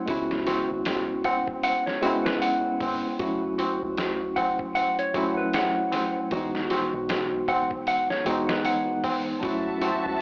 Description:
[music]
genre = trip hop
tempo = 77 BPM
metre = 4/4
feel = swing 58% on 16ths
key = F# dorian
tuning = A4 = 440 Hz
[part]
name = tine electric piano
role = accompaniment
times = 0.0-10.2 s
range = E3 to E4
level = -32 LUFS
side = equal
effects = harmonic tremolo, tape echo
[part]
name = mellow electric guitar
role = arpeggios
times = 0.0-10.2 s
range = F#4 to F#5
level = -30 LUFS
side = equal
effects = vintage 12-bit sampler grit, tape echo
[part]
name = deep dub fingered electric bass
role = bass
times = 0.0-10.2 s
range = E1 to C#2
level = -45 LUFS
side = equal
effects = none
[part]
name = trip hop sampler-style drum kit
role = drums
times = 0.1-10.0 s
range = hi-hat, kick drum, snare drum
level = -35 LUFS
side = equal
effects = none
[part]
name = tabla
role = percussion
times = 0.1-10.2 s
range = none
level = -35 LUFS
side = equal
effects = none
[part]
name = warm symphonic violin section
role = sustained chords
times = 9.4-10.2 s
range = F#4 to A5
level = -32 LUFS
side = equal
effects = none
[sound]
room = light reverb, digital ambience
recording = dry, gritty hardware recording, cassette tape, AM radio sound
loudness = -26 LUFS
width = mono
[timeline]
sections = 0.0-10.2 A section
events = none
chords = 0.1 C#m7; 3.2 F#m7; 6.3 Emaj7; 9.4 F#m7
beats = | 0.08 0.86 1.64 2.42 | 3.20 3.98 4.76 5.54 | 6.32 7.09 7.87 8.65 | 9.43 10.21

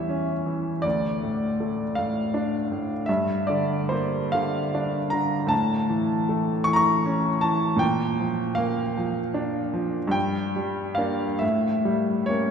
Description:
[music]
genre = classical, romantic nocturne for solo piano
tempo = 45-56 BPM (dotted quarters)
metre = 6/8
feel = rubato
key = D minor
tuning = A4 = 439 Hz
[part]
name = bright baby grand piano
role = solo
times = 0.0-12.5 s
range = D2 to C#6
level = -22 LUFS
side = equal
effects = none
[sound]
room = wet cathedral reverb, RT60 4.6 s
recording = recorded in a church or concert hall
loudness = -22 LUFS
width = side -7 dB against mid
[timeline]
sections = 0.0-12.5 A section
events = none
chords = 0.0 C#dim/E; 0.8 Dm; 3.1 Gm7; 5.5 A; 7.8 Bb; 11.4 A7b9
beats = | 0.85 1.98 | 3.08 4.34 | 5.51 6.67 | 7.81 8.96 | 10.14 11.42

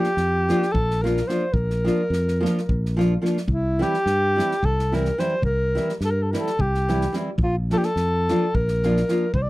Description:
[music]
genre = balkan folk, Balkan wedding band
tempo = 215 BPM (eighths)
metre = 7/8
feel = straight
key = unclear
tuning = A4 = 440 Hz
[part]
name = mellow alto saxophone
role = melody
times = 0.0-9.5 s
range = E4 to D5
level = -24 LUFS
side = equal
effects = none
[part]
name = nylon-string guitar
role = accompaniment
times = 0.0-9.2 s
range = E3 to F4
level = -23 LUFS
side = equal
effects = none
[part]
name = natural country drum kit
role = percussion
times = 0.0-9.5 s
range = kick drum, snare drum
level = -29 LUFS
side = equal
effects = none
[part]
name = fingered electric bass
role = bass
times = 0.2-9.5 s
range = Bb1 to G2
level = -23 LUFS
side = equal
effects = none
[sound]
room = little or no reverb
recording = dry, close 1970s-style studio recording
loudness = -20 LUFS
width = side -18 dB against mid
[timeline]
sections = 0.0-9.5 A section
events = none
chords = 0.0 Bb; 3.5 C; 7.4 Bb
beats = 0.14 0.41 0.69 0.97 1.25 | 1.52 1.80 2.08 2.36 2.64 2.91 3.19 | 3.47 3.75 4.03 4.30 4.58 4.86 5.14 | 5.42 5.70 5.98 6.26 6.54 6.82 7.10 | 7.38 7.66 7.94 8.22 8.50 8.78 9.06 | 9.34

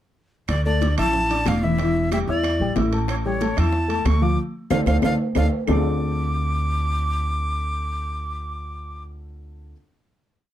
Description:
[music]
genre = latin, salsa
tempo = 185 BPM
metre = 4/4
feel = straight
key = D minor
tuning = A4 = 443 Hz
[part]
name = breathy bright jazz flute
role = melody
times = 0.5-9.0 s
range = C#5 to D6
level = -27 LUFS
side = equal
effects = none
[part]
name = upright bass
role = bass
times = 0.5-9.7 s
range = E1 to E2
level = -24 LUFS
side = equal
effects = none
[part]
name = bongos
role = percussion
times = 0.5-5.8 s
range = none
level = -28 LUFS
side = left 3 dB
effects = none
[part]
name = claves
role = percussion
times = 0.5-5.8 s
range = none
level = -37 LUFS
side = right 6 dB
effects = none
[part]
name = congas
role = percussion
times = 0.5-5.8 s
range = none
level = -28 LUFS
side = right 1 dB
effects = none
[part]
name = timbales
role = percussion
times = 0.5-5.8 s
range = none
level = -32 LUFS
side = right 7 dB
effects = none
[part]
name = dark concert grand piano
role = accompaniment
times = 0.7-9.7 s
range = D3 to E6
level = -26 LUFS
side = left 3 dB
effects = none
[sound]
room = light reverb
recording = dark, warm production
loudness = -20 LUFS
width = side -12 dB against mid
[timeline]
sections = 0.5-5.7 A section; 5.7-8.3 final chord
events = band accent 4.4-5.7; drum fill 4.7-5.7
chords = 0.5 Dsus2; 1.8 Em7; 3.1 A7; 4.4 Dm7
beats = | 0.49 0.81 1.14 1.46 | 1.79 2.11 2.44 2.76 | 3.09 3.41 3.73 4.06 | 4.38 4.71 5.03 5.35 | 5.68 6.00 6.32 6.64 | 6.97 7.29 7.61 7.94

